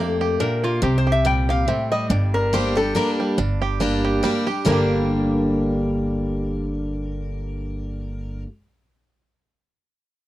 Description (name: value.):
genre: bluegrass.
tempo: 141 BPM.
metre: 3/4.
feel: swing 55% on 8ths.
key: G minor.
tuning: A4 = 440 Hz.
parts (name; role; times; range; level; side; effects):
bluegrass banjo; melody; 0.0-8.5 s; G3 to G4; -28 LUFS; right 7 dB; none.
picked steel-string acoustic guitar; accompaniment; 0.0-8.5 s; F2 to G4; -22 LUFS; left 1 dB; none.
upright bass; bass; 0.0-8.4 s; G1 to F2; -25 LUFS; right 1 dB; none.
lap resonator guitar; melody; 0.4-8.4 s; F4 to G5; -24 LUFS; left 2 dB; none.
room: light reverb.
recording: dry, close 1970s-style studio recording.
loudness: -19 LUFS.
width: side -15 dB against mid.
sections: 0.0-3.4 A section; 3.4-4.7 B section; 4.7-7.2 C section.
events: none.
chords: 0.0 Bb; 0.8 C5; 2.1 Gm.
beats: 0.40 | 0.83 1.25 1.68 | 2.10 2.53 2.96 | 3.38 3.81 4.24 | 4.66 5.09 5.52 | 5.94 6.37 6.79.